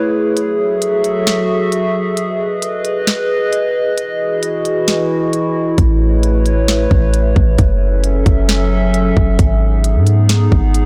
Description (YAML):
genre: hip hop, atmospheric cloud-rap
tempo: 133 BPM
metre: 4/4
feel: half-time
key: unclear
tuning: A4 = 441 Hz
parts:
  - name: warbly tape-like pad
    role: sustained chords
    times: 0.0-10.9 s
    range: E3 to E5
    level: -18 LUFS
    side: equal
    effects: chorus, built-in reverb, sidechain pumping
  - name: trap drum kit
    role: drums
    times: 0.4-10.8 s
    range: hi-hat, kick drum, snare drum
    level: -18 LUFS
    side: equal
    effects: none
  - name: warm 808-style bass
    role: bass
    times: 5.8-10.9 s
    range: F#1 to G#2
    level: -15 LUFS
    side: equal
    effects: none
room: light reverb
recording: blown-out, overdriven recording, overdrive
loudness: -15 LUFS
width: mono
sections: 0.0-10.9 A section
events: break 0.0-5.8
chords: 0.4 F#m7; 2.2 G#m; 4.0 Emaj7; 5.8 Amaj7; 7.6 F#m7; 9.4 G#m